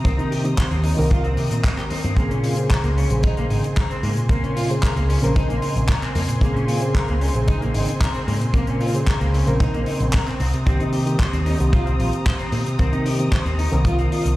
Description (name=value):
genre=nu-disco, nu disco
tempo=113 BPM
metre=4/4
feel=straight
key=Bb dorian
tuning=A4 = 440 Hz
part: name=reed electric piano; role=accompaniment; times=0.0-14.4 s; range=Db3 to C5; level=-24 LUFS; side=equal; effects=overdrive, fast tremolo, sidechain pumping
part: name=muted studio string section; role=sustained chords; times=0.0-14.4 s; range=C4 to Eb6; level=-31 LUFS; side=equal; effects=vintage 12-bit sampler grit, sidechain pumping
part: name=electric guitar through a small old amp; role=riff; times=0.0-14.2 s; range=C3 to C5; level=-29 LUFS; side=left 1 dB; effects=wide subtle chorus, digital delay
part: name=picked electric bass with an envelope filter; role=bass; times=0.0-14.4 s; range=Ab1 to C3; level=-21 LUFS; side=equal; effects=tube saturation
part: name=kick drum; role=drums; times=0.0-14.0 s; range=none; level=-18 LUFS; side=equal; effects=none
part: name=damped 70s drum kit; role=drums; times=0.1-14.4 s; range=handclaps, hi-hat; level=-31 LUFS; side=left 1 dB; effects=none
room=light reverb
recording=played on a big sound system in a bare room, stone room reverb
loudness=-18 LUFS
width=side -17 dB against mid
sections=0.0-14.4 A section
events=none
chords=0.0 Cm7; 2.2 Bbm9; 10.4 Cm7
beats=| 0.05 0.58 1.11 1.64 | 2.17 2.70 3.23 3.77 | 4.30 4.83 5.36 5.89 | 6.42 6.95 7.48 8.01 | 8.54 9.08 9.61 10.14 | 10.67 11.20 11.73 12.26 | 12.79 13.32 13.85